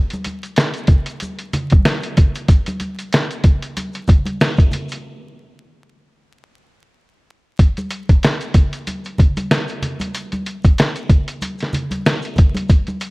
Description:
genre	hip hop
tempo	94 BPM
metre	4/4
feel	swing 57% on 16ths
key	none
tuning	none
part	lo-fi sampler-style drum kit	drums	0.1-13.1 s	hi-hat, kick drum, snare drum	-14 LUFS	equal	vintage 12-bit sampler grit
part	congas and maracas	percussion	0.1-13.1 s	none	-27 LUFS	equal	none
room	digital ambience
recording	vinyl crackle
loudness	-15 LUFS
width	side -25 dB against mid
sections	0.0-7.6 A section; 7.6-13.1 B section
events	break 5.0-7.6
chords	none

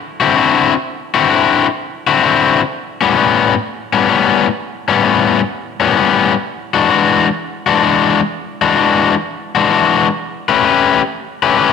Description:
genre	blues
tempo	128 BPM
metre	4/4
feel	swing 66% on 8ths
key	A mixolydian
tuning	A4 = 439 Hz
part	cranked stack guitar	solo	0.2-11.7 s	A2 to B4	-11 LUFS	left 6 dB	overdrive
room	moderate echo chamber reverb, RT60 1.6 s, digital ambience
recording	none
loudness	-11 LUFS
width	side -6 dB against mid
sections	0.0-11.7 A section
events	none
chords	0.0 D9; 2.7 A9; 6.4 E9; 10.2 A9

